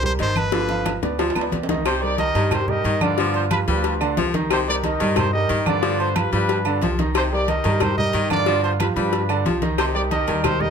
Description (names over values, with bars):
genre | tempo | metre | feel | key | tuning
latin, salsa | 182 BPM | 4/4 | straight | C minor | A4 = 440 Hz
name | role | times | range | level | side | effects
brilliant trumpet | melody | 0.0-1.0 s | B4 to C5 | -24 LUFS | left 1 dB | none
warm baby grand piano | accompaniment | 0.0-10.7 s | D3 to F5 | -25 LUFS | right 3 dB | none
upright bass | bass | 0.0-10.7 s | G1 to G2 | -25 LUFS | equal | none
congas | percussion | 0.0-10.7 s | none | -28 LUFS | left 2 dB | none
bright baritone saxophone | second line | 0.2-10.5 s | C3 to G3 | -27 LUFS | left 6 dB | none
agogo bells and timbales | percussion | 0.2-10.6 s | none | -30 LUFS | right 7 dB | none
cowbell and bongos | percussion | 0.2-10.6 s | none | -28 LUFS | left 9 dB | none
claves | percussion | 0.4-10.6 s | none | -32 LUFS | right 4 dB | none
mellow trumpet section | melody | 1.9-10.7 s | D4 to Eb5 | -24 LUFS | equal | none
room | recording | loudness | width
light reverb | close, detailed microphones | -18 LUFS | side -6 dB against mid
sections
0.0-1.9 A section; 1.9-10.7 B section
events
drum fill 0.5-1.9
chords
0.0 Cm7; 0.5 G7; 1.9 Cm7; 3.2 G7; 4.5 Cm7; 5.8 G7; 7.2 Cm7; 8.5 G7; 9.8 Cm7